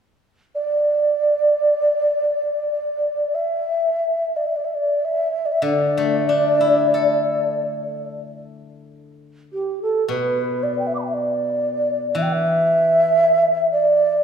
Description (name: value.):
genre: chinese traditional, Chinese chamber ensemble.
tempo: free time.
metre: none.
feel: none.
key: D zhi mode.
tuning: A4 = 440 Hz.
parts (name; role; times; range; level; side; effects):
mellow xiao; melody; 0.5-14.2 s; G4 to D6; -18 LUFS; right 1 dB; none.
steel-string zither; accompaniment; 5.6-14.2 s; B2 to A4; -25 LUFS; left 4 dB; none.
room: wet recital hall reverb, RT60 1.8 s.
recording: heard from further back in the room.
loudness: -17 LUFS.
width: side -7 dB against mid.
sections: 0.0-10.1 A section; 10.1-14.2 B section.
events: none.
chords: none.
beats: free time.